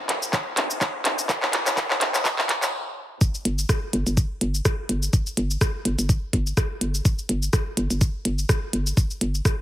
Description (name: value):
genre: minimal techno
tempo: 125 BPM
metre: 4/4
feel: swing 55% on 16ths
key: unclear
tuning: A4 = 440 Hz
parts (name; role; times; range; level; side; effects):
- minimal click drum kit; drums; 0.1-9.6 s; handclaps, hi-hat, rim click, shaker; -24 LUFS; equal; overdrive
- electronic kick drum; drums; 0.3-9.6 s; none; -21 LUFS; equal; overdrive
- hollow knocking FM bass; bass; 3.5-9.4 s; G1; -24 LUFS; equal; sidechain pumping
room: moderate plate reverb, RT60 1.6 s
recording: heavily compressed radio sound, high-pass filter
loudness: -21 LUFS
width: side -13 dB against mid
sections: 0.0-3.2 A section; 3.2-9.6 B section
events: build-up 0.0-3.2; drum fill 0.0-2.7; stop 2.7-3.2; drop 3.2-9.6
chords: none